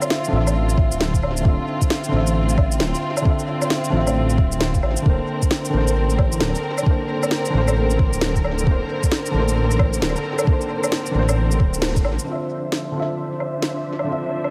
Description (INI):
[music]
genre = future garage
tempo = 133 BPM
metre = 4/4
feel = swing 62% on 16ths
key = D minor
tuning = A4 = 440 Hz
[part]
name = felt-muted upright piano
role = accompaniment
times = 0.0-14.5 s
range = D3 to E5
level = -27 LUFS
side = equal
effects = sidechain pumping, tape echo
[part]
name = warm studio string section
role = sustained chords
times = 0.0-14.5 s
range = D3 to E5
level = -29 LUFS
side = equal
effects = sidechain pumping, low-pass filter
[part]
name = electronic shaker, woodblock and snare drum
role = drums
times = 0.0-14.5 s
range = none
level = -27 LUFS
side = equal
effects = analog delay
[part]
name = swelling detuned saw bass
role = bass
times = 0.3-12.2 s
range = D1 to A1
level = -23 LUFS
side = equal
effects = tube saturation, sidechain pumping
[part]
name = electronic kick drum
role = drums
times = 0.8-12.0 s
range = none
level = -21 LUFS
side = equal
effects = none
[sound]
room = moderate echo chamber reverb, RT60 1.7 s, digital ambience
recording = echo-heavy mix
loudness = -20 LUFS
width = mono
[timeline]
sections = 0.0-12.3 A section; 12.3-14.5 B section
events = band accent 11.8; filter sweep on string section 12.3-14.5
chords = 0.0 Dm9; 5.1 Bbadd9/D; 12.3 Dm9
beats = 0.10 0.55 1.00 | 1.45 1.90 2.35 2.80 | 3.25 3.71 4.16 4.61 | 5.06 5.51 5.96 6.41 | 6.86 7.32 7.77 8.22 | 8.67 9.12 9.57 10.02 | 10.47 10.92 11.38 11.83 | 12.28 12.73 13.18 13.63 | 14.08